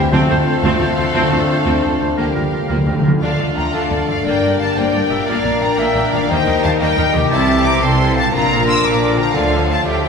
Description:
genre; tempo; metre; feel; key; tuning
cinematic; 117 BPM (dotted quarters); 6/8; straight; D minor; A4 = 441 Hz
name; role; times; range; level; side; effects
clear symphonic violin section; melody; 0.0-10.1 s; F5 to E6; -22 LUFS; left 2 dB; none
clear clarinet; second line; 0.0-10.1 s; F4 to E5; -24 LUFS; left 1 dB; none
clear oboe; second line; 0.0-3.1 s; Bb4 to C5; -26 LUFS; right 1 dB; none
clear symphonic violin section; second line; 0.0-10.1 s; F4 to F5; -26 LUFS; left 1 dB; none
silver concert flute; second line; 0.0-10.1 s; D5 to C6; -24 LUFS; equal; none
clear symphonic viola section; accompaniment; 0.0-10.1 s; D3 to F4; -25 LUFS; equal; none
clear trombone section; sustained chords; 0.0-10.1 s; G2 to Bb3; -24 LUFS; right 2 dB; none
dark French horn section; sustained chords; 0.0-10.1 s; A3 to F4; -22 LUFS; left 5 dB; none
concert harp; arpeggios; 0.0-10.1 s; G2 to D5; -25 LUFS; left 6 dB; none
rich symphonic cello section; bass; 0.0-10.1 s; D2 to Eb3; -23 LUFS; right 2 dB; none
rich symphonic double bass section; bass; 0.0-10.1 s; G1 to Eb2; -23 LUFS; right 2 dB; none
timpani; percussion; 0.1-3.7, 9.4-9.8 s; D3; -21 LUFS; right 1 dB; none
room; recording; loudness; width
wet recital hall reverb, RT60 1.3 s; recorded in a church or concert hall; -13 LUFS; side -5 dB against mid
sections
0.0-3.2 A section; 3.2-10.1 B section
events
build-up 0.0-3.2; timpani fill 2.2-3.2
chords
0.1 F6/D; 2.2 Gm7/D; 3.2 Dm; 4.2 Gm; 5.3 Bb; 6.3 Eb; 7.3 C6; 8.3 Bb; 9.3 Dm

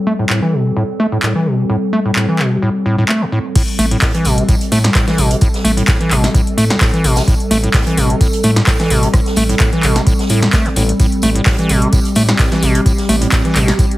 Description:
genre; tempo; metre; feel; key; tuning
acid house; 129 BPM; 4/4; swing 54% on 16ths; A minor; A4 = 439 Hz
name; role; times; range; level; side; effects
warbly tape-like pad; sustained chords; 0.0-14.0 s; G3 to A4; -19 LUFS; equal; chorus, built-in reverb, sidechain pumping
acid bass, square; riff; 0.1-13.9 s; A2 to A3; -16 LUFS; equal; overdrive
electro analog drum machine; drums; 0.3-14.0 s; crash cymbal, handclaps, hi-hat, rim click, snare drum; -18 LUFS; equal; overdrive
electronic kick drum; drums; 3.6-13.9 s; none; -14 LUFS; equal; overdrive
open jazz drum kit; drums; 3.6-13.9 s; hi-hat, snare drum, tambourine; -27 LUFS; right 1 dB; high-pass filter on hats, high-pass filter on snare, high-pass filter on perc, high-pass filter on room
round analog bass; bass; 3.8-13.7 s; A1 to A2; -16 LUFS; equal; sidechain pumping
room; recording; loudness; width
moderate studio reverb, RT60 0.6 s; heavily compressed radio sound, multiband compression; -11 LUFS; side -17 dB against mid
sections
0.0-3.6 A section; 3.6-14.0 B section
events
drop 3.6-14.0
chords
0.0 Am7

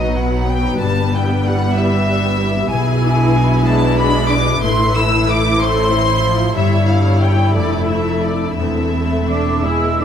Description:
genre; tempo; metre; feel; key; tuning
classical, slow romantic movement for symphony orchestra; 56-64 BPM (dotted quarters); 6/8; rubato; A minor; A4 = 440 Hz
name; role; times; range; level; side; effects
warm symphonic violin section; melody; 0.0-10.0 s; D5 to E6; -20 LUFS; left 2 dB; none
dark studio violin section; second line; 0.0-10.0 s; G3 to C#5; -23 LUFS; left 2 dB; none
dark symphonic viola section; accompaniment; 0.0-10.0 s; E3 to E4; -21 LUFS; equal; none
concert harp; arpeggios; 0.0-10.0 s; E2 to D5; -22 LUFS; left 6 dB; none
clear studio cello section; bass; 0.0-10.0 s; E2 to E4; -21 LUFS; right 2 dB; none
dark symphonic double bass section; bass; 0.0-10.0 s; E1 to B1; -21 LUFS; right 3 dB; none
mellow flute section; second line; 9.3-10.0 s; D6 to E6; -21 LUFS; right 1 dB; none
room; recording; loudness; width
light reverb; close, detailed microphones; -13 LUFS; side -8 dB against mid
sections
0.0-10.0 A section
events
none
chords
0.0 B; 0.8 Em/G; 2.7 E7/B; 4.6 Am; 6.6 A7/G; 7.6 Dm/F; 8.6 Am/E

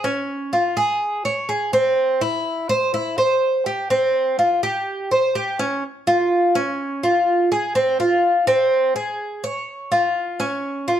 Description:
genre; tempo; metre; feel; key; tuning
latin; 125 BPM; 4/4; straight; unclear; A4 = 440 Hz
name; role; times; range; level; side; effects
Cuban tres; solo; 0.0-11.0 s; C4 to Db5; -18 LUFS; equal; none
room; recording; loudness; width
light reverb; dark, warm production; -18 LUFS; side -10 dB against mid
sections
0.0-5.8 A section; 5.8-11.0 B section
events
none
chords
none

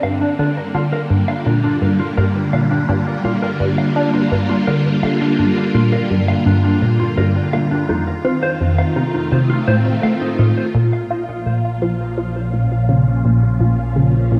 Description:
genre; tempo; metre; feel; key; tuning
ambient; 84 BPM; 4/4; straight; Bb minor from 10.7 s; A4 = 440 Hz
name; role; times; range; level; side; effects
phased string machine; sustained chords; 0.0-14.4 s; Bb2 to F4; -21 LUFS; equal; ensemble chorus, phaser
mellow electric guitar; arpeggios; 0.0-10.5 s; D4 to F5; -25 LUFS; equal; delay
resonant blip pluck; riff; 0.0-14.4 s; F2 to F4; -20 LUFS; equal; phaser, analog chorus, delay
warm sub bass; bass; 10.7-14.4 s; Bb1; -33 LUFS; equal; none
room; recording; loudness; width
moderate plate reverb, RT60 2.5 s; dark, warm production; -17 LUFS; mono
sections
0.0-10.7 A section; 10.7-14.4 B section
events
none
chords
0.0 Gm7; 7.9 F7; 10.7 Bbm

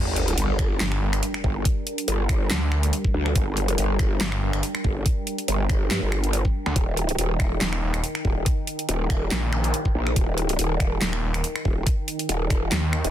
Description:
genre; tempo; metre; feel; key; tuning
heavy wobble dubstep; 141 BPM; 4/4; swing 54% on 16ths, half-time; G minor; A4 = 440 Hz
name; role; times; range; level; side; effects
supersaw pad; sustained chords; 0.0-13.1 s; Eb3 to G5; -33 LUFS; equal; phaser, vintage 12-bit sampler grit, sidechain pumping, low-pass filter
growl bass; bass; 0.0-13.1 s; Eb1 to G2; -24 LUFS; equal; chorus, overdrive
sub drop and zap; sound effects; 0.0-1.7, 9.5-9.6 s; none; -33 LUFS; equal; none
dubstep drum kit; drums; 0.2-13.1 s; finger snaps, handclaps, hi-hat, snare drum; -28 LUFS; equal; none
electronic kick drum; drums; 0.6-12.6 s; none; -23 LUFS; equal; none
snarling distorted saw bass; bass; 0.8-13.0 s; Eb1 to Eb2; -24 LUFS; equal; overdrive
room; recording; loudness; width
little or no reverb; dense, heavily limited modern master; -21 LUFS; side -11 dB against mid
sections
0.0-13.1 A section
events
impact 0.0-1.7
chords
0.0 Gm; 6.8 Eb

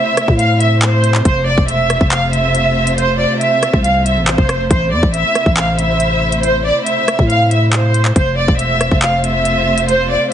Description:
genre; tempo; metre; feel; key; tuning
hip hop, drill; 139 BPM; 4/4; half-time; unclear; A4 = 440 Hz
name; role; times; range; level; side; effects
warm studio violin section; melody; 0.0-10.3 s; C5 to F5; -15 LUFS; right 1 dB; none
warm symphonic string section; sustained chords; 0.0-10.3 s; C3 to C5; -21 LUFS; equal; none
drill drum kit; drums; 0.2-10.0 s; handclaps, hi-hat, kick drum, rim click; -16 LUFS; equal; none
growling 808-style bass; bass; 0.3-10.2 s; E1 to A2; -16 LUFS; equal; none
room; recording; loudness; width
little or no reverb; heavily compressed radio sound, nothing above 10.3 kHz; -11 LUFS; side -10 dB against mid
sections
0.0-10.3 A section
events
none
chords
0.0 Am; 1.3 F; 4.7 Am; 8.2 F

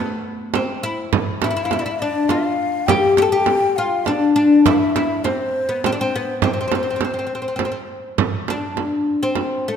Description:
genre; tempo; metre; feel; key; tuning
Arabic maqam ensemble; 102 BPM; 3/4; straight; C maqam ajam; A4 = 441 Hz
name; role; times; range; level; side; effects
oud; melody; 0.0-9.8 s; A3 to A4; -19 LUFS; left 2 dB; none
frame drum; percussion; 0.5-9.5 s; none; -23 LUFS; right 7 dB; none
breathy mellow ney; second line; 1.4-7.9 s; C5 to G5; -24 LUFS; left 4 dB; none
room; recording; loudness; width
moderate concert hall reverb, RT60 2.0 s; none; -17 LUFS; side -8 dB against mid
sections
0.0-8.2 A section; 8.2-9.8 B section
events
none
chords
none

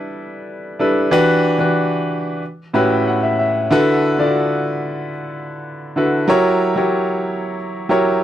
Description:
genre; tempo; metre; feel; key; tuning
soul; 93 BPM; 4/4; straight; unclear; A4 = 440 Hz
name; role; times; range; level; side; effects
clear grand piano; solo; 0.0-8.2 s; A2 to B5; -16 LUFS; equal; none
room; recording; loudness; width
light reverb; dry, close 1970s-style studio recording; -15 LUFS; side -11 dB against mid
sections
0.0-8.2 A section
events
grand piano fill 2.4-3.7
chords
0.0 G69; 1.1 Em7; 2.4 A13; 3.7 D69; 6.3 F#7b9

